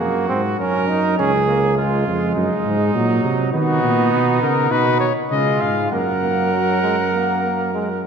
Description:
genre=classical, imitative canzona for brass ensemble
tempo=101 BPM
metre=4/4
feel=straight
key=F# major from 3.5 s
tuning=A4 = 440 Hz
part: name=clear trumpet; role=second line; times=0.0-8.0 s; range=Eb4 to A#4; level=-22 LUFS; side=right 4 dB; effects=none
part: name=brilliant trombone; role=accompaniment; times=0.0-7.9 s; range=F#3 to Eb4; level=-22 LUFS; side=right 2 dB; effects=none
part: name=mellow tuba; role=bass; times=0.0-8.0 s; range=Db2 to D#3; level=-21 LUFS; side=right 2 dB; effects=none
part: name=warm cornet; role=melody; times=3.5-8.0 s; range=F#4 to F#5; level=-21 LUFS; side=left 7 dB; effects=none
room=wet church reverb, RT60 3.0 s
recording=minimal, uncompressed stereo recording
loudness=-16 LUFS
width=side -6 dB against mid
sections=0.0-8.1 A section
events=none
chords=0.0 Ebm/Gb; 1.2 Db; 2.4 Cdim/Gb; 3.5 B; 5.3 C#; 5.9 F#

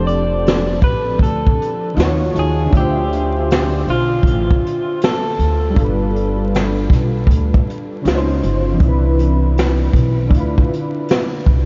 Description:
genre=lo-fi hip hop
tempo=79 BPM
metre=4/4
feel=swing 66% on 16ths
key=D dorian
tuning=A4 = 440 Hz
part: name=electric guitar through a small old amp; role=melody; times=0.0-5.8 s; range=F4 to D5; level=-24 LUFS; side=equal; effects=analog delay
part: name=warbly lo-fi synth keys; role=accompaniment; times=0.0-11.7 s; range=C#3 to E5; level=-23 LUFS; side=equal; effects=chorus
part: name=upright bass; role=bass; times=0.0-11.7 s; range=F1 to Eb2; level=-21 LUFS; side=equal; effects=none
part: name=vintage brush drum kit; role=drums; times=0.1-11.7 s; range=hi-hat, kick drum, snare drum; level=-19 LUFS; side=equal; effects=none
room=moderate huge ambient reverb, RT60 8.0 s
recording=dreamy mix soaked in reverb, vinyl crackle, nothing above 7.5 kHz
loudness=-16 LUFS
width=mono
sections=0.0-11.7 A section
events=none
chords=0.0 F6; 2.0 Ebm9; 2.7 Dm9; 5.8 G7; 8.0 C#maj7; 8.8 Cmaj7; 10.3 Dm69

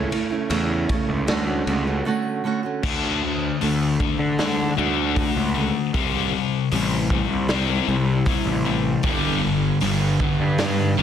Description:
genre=quiet-loud alternative rock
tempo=77 BPM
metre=4/4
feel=straight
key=unclear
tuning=A4 = 440 Hz
part: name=fingerpicked steel-string acoustic guitar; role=arpeggios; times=0.0-11.0 s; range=G2 to F#4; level=-28 LUFS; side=right 5 dB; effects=none
part: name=fuzz picked electric bass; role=bass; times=0.0-11.0 s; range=G1 to D3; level=-24 LUFS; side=equal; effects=overdrive
part: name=raw garage drum kit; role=drums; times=0.1-10.8 s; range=crash cymbal, hi-hat, kick drum, ride cymbal, snare drum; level=-27 LUFS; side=equal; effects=none
part: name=fuzz guitar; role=riff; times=2.8-11.0 s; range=G2 to D4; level=-23 LUFS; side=left 10 dB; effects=distortion
part: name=thick fuzz guitar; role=riff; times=9.0-11.0 s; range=G2 to G3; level=-23 LUFS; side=right 7 dB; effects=distortion
room=light reverb, small room ambience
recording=dense, heavily limited modern master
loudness=-19 LUFS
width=side -9 dB against mid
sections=0.0-2.8 A section; 2.8-11.0 B section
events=break 2.1-2.8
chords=0.0 A/C#; 1.3 Dmaj7; 5.9 C; 9.0 G

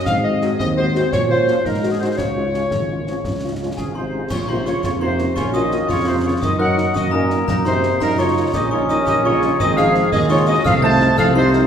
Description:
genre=military-style march for wind band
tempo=113 BPM (dotted quarters)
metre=6/8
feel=straight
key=unclear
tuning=A4 = 441 Hz
part: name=mellow cornet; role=melody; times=0.0-11.7 s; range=Ab4 to A5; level=-24 LUFS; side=equal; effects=none
part: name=mellow euphonium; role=second line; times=0.0-11.7 s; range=Ab2 to F4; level=-24 LUFS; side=right 1 dB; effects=none
part: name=mellow woodwind section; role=second line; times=0.0-11.7 s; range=Db4 to F5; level=-24 LUFS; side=left 1 dB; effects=none
part: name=mellow tuba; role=bass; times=0.1-11.6 s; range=Ab1 to Bb2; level=-22 LUFS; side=right 2 dB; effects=none
part: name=concert snare drum, clash cymbals and concert bass drum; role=drums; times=0.1-11.7 s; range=none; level=-26 LUFS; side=equal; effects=none
part: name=dark French horn section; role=accompaniment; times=0.2-11.6 s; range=F3 to Gb4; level=-26 LUFS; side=left 2 dB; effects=none
part: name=bright trombone section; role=sustained chords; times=0.4-11.7 s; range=F3 to F4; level=-27 LUFS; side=right 1 dB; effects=none
part: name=glockenspiel with brass mallets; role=second line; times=3.8-11.7 s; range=Ab5 to A6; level=-24 LUFS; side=left 3 dB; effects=none
part: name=small flute group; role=second line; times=3.8-11.7 s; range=Ab4 to A5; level=-26 LUFS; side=left 1 dB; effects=none
room=wet recital hall reverb, RT60 1.6 s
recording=recorded in a church or concert hall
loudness=-15 LUFS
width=side -8 dB against mid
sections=0.0-4.3 A section; 4.3-11.7 B section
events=none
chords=0.1 Ab7; 1.1 Bbm; 1.7 Ab5; 2.2 Db; 4.3 Bbm; 6.4 Ebm/Gb; 8.5 Eb7/Bb; 9.6 Ab; 10.7 F7/C

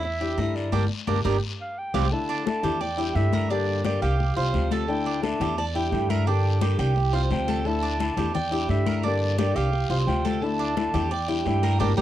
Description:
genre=latin, Cuban son and guajira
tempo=173 BPM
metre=4/4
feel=straight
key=unclear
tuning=A4 = 440 Hz
part: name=mellow clarinet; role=melody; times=0.0-12.0 s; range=D5 to A5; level=-30 LUFS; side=right 1 dB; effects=cassette tape, plate reverb
part: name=flamenco guitar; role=accompaniment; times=0.0-12.0 s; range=C3 to G4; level=-29 LUFS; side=left 6 dB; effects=cassette tape, plate reverb
part: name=Cuban tres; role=arpeggios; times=0.0-12.0 s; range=C4 to D5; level=-30 LUFS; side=right 8 dB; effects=cassette tape, plate reverb
part: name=upright bass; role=bass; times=0.0-12.0 s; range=G1 to G2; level=-26 LUFS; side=right 1 dB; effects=none
part: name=congas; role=percussion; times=0.0-12.0 s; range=none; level=-31 LUFS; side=left 7 dB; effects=none
part: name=guiro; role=percussion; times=0.0-12.0 s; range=none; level=-39 LUFS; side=left 7 dB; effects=none
room=light reverb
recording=home recording on cassette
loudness=-22 LUFS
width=side -12 dB against mid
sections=0.0-2.1 A section; 2.1-12.0 B section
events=band accent 0.7-2.1, 11.8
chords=0.0 Em7b5; 0.7 Gm; 1.4 Csus4; 2.1 Dsus2; 2.8 Em7b5; 3.5 Gm; 4.2 Csus4; 4.9 Dsus2; 5.6 Em7b5; 6.3 Gm; 7.0 Csus4; 7.7 Dsus2; 8.3 Em7b5; 9.0 Gm; 9.7 Csus4; 10.4 Dsus2; 11.1 Em7b5

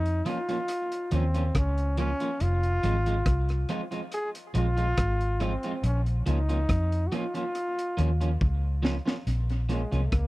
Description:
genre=roots reggae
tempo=70 BPM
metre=4/4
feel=straight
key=Bb minor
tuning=A4 = 443 Hz
part: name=clear trombone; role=melody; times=0.0-10.3 s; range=Ab3 to Ab4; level=-32 LUFS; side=equal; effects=dub echo
part: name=vintage muted fingered electric bass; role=bass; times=0.0-10.3 s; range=F1 to F2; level=-26 LUFS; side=equal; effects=none
part: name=crunchy breakbeat drum kit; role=drums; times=0.1-10.3 s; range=hi-hat, kick drum, rim click, snare drum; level=-30 LUFS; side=equal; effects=tape echo
part: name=electric guitar at the edge of break-up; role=accompaniment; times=0.3-10.0 s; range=F3 to F4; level=-34 LUFS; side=right 2 dB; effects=dub echo
room=little or no reverb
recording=dry, close 1970s-style studio recording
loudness=-25 LUFS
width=side -19 dB against mid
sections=0.0-9.3 A section; 9.3-10.3 B section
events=drum fill 8.4-9.3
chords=0.0 Bbm; 2.4 Fm; 5.8 Bbm

